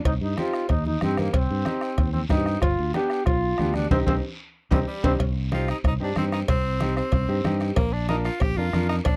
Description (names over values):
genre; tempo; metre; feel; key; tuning
latin, cumbia; 186 BPM; 4/4; straight; C minor; A4 = 441 Hz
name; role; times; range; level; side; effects
bright trombone; melody; 0.0-5.1 s; Bb3 to G4; -29 LUFS; equal; none
fingered electric bass; bass; 0.1-9.2 s; G1 to G2; -28 LUFS; equal; none
bombo; percussion; 0.1-9.2 s; none; -27 LUFS; equal; none
congas; percussion; 0.1-9.2 s; none; -34 LUFS; equal; none
cowbell and timbales; percussion; 0.1-9.2 s; none; -34 LUFS; equal; none
guiro; percussion; 0.1-9.2 s; none; -45 LUFS; equal; none
bright upright piano; accompaniment; 0.4-9.0 s; B3 to Bb4; -33 LUFS; equal; none
edgy tenor saxophone; second line; 4.7-9.2 s; G3 to G4; -32 LUFS; equal; none
room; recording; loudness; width
little or no reverb; dry, close 1970s-style studio recording; -24 LUFS; mono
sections
0.0-5.2 A section; 5.2-9.2 B section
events
band accent 3.9-5.2; drum fill 4.7-5.2; tenor saxophone solo 5.2-9.2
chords
0.0 Cm; 2.6 G7; 3.9 Cm; 7.8 Bb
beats
| 0.05 0.37 0.69 1.01 | 1.34 1.66 1.98 2.30 | 2.63 2.95 3.27 3.59 | 3.91 4.24 4.56 4.88 | 5.20 5.52 5.84 6.17 | 6.49 6.81 7.13 7.45 | 7.77 8.10 8.42 8.74 | 9.06